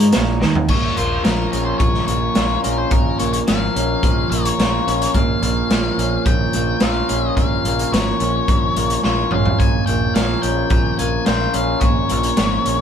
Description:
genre	psychedelic rock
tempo	108 BPM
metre	4/4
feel	straight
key	Bb minor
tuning	A4 = 440 Hz
part	hand-pumped harmonium	sustained chords	0.0-12.8 s	F3 to Db5	-29 LUFS	right 3 dB	none
part	electric guitar through a small old amp	riff	0.0-12.8 s	Bb2 to F4	-21 LUFS	equal	none
part	overdriven picked electric bass	bass	0.0-12.8 s	Ab1 to Ab2	-23 LUFS	right 1 dB	none
part	raw garage drum kit	drums	0.0-12.8 s	crash cymbal, hi-hat, kick drum, snare drum, toms	-19 LUFS	equal	none
part	octave-fuzz lead guitar	melody	0.7-12.8 s	Bb4 to Ab5	-23 LUFS	left 5 dB	distortion
room	moderate small room ambience, RT60 0.5 s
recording	band playing live in one room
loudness	-15 LUFS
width	side -8 dB against mid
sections	0.7-12.8 A section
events	drum fill 0.4, 9.0-9.6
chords	0.0 Bbm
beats	0.15 | 0.70 1.26 1.81 2.37 | 2.93 3.48 4.04 4.59 | 5.15 5.71 6.26 6.82 | 7.38 7.93 8.49 9.04 | 9.60 10.16 10.71 11.27 | 11.83 12.38

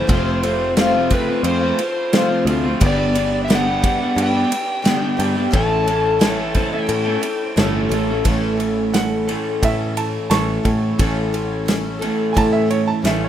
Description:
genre	folk rock and heartland rock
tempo	88 BPM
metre	4/4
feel	straight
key	A major from 8.3 s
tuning	A4 = 439 Hz
part	overdriven slide guitar	melody	0.0-7.5 s	B4 to A5	-23 LUFS	equal	tape echo
part	picked twelve-string acoustic guitar	accompaniment	0.0-13.3 s	F2 to A4	-24 LUFS	left 6 dB	none
part	dark chamber string section	sustained chords	0.0-13.3 s	C4 to C#5	-34 LUFS	left 1 dB	none
part	electric guitar at the edge of break-up	riff	0.0-13.3 s	F2 to A4	-21 LUFS	right 1 dB	wide subtle chorus
part	picked electric bass	bass	0.1-13.3 s	F1 to A2	-23 LUFS	equal	none
part	loose indie drum kit	drums	0.1-13.2 s	kick drum, ride cymbal, snare drum	-22 LUFS	equal	none
part	bright upright piano	second line	6.6-13.3 s	C#4 to C#6	-25 LUFS	right 6 dB	none
room	little or no reverb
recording	rough home demo mix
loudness	-16 LUFS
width	side -10 dB against mid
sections	0.0-8.3 A section; 8.3-13.3 B section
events	upright piano solo 8.3-13.3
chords	0.1 F; 2.8 G; 5.5 A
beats	| 0.10 0.78 1.45 2.13 | 2.81 3.49 4.17 4.85 | 5.53 6.21 6.89 7.57 | 8.26 8.94 9.62 10.31 | 10.99 11.68 12.36 13.05

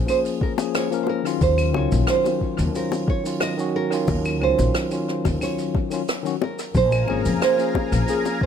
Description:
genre	sunset chillout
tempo	90 BPM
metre	4/4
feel	straight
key	unclear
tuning	A4 = 438 Hz
part	nylon-string guitar	melody	0.0-8.5 s	Ab4 to Eb5	-25 LUFS	right 6 dB	analog delay
part	tine electric piano	accompaniment	0.0-8.5 s	Eb3 to Bb4	-25 LUFS	moving between left 11 dB and right 4 dB	auto-pan, tape echo
part	jazz brush drum kit	drums	0.1-8.4 s	claves, hi-hat, rim click, shaker	-31 LUFS	equal	tape echo
part	electronic kick drum	drums	0.4-8.5 s	none	-24 LUFS	left 1 dB	none
part	bongos	percussion	0.6-8.4 s	none	-31 LUFS	left 9 dB	none
part	upright bass	bass	1.4-8.0 s	Ab1 to F2	-22 LUFS	left 1 dB	none
part	lush unison pad	sustained chords	6.7-8.5 s	Bb4 to Bb5	-28 LUFS	left 1 dB	chorus
room	moderate spring reverb, RT60 2.8 s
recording	echo-heavy mix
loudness	-19 LUFS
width	side -8 dB against mid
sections	0.0-8.5 A section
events	none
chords	0.0 Bbm7; 1.4 Ebm9; 6.7 Bbm7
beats	0.08 0.75 | 1.41 2.08 2.75 3.41 | 4.08 4.75 5.41 6.08 | 6.75 7.41 8.08

